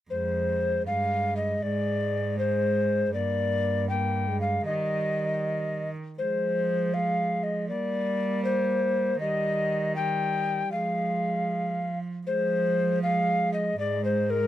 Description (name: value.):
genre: classical, renaissance-style consort dance.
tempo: 79 BPM (dotted quarters).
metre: 6/8.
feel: straight.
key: F dorian.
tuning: A4 = 440 Hz.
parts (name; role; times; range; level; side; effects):
mellow hollow tenor recorder; melody; 0.1-14.5 s; Bb4 to G5; -26 LUFS; left 2 dB; none.
mellow trombone; accompaniment; 0.1-14.5 s; G3 to Bb3; -33 LUFS; right 1 dB; none.
warm cello; bass; 0.1-14.5 s; F2 to G3; -30 LUFS; right 3 dB; none.
room: little or no reverb.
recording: close, detailed microphones.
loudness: -24 LUFS.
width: side -12 dB against mid.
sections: 0.1-12.3 A section; 12.3-14.5 A section.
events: none.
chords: 0.1 Fm; 1.6 Ab; 3.1 Gm; 4.7 Eb; 6.2 Fm; 7.7 Gm; 9.2 Eb; 10.7 Fm; 13.8 Ab.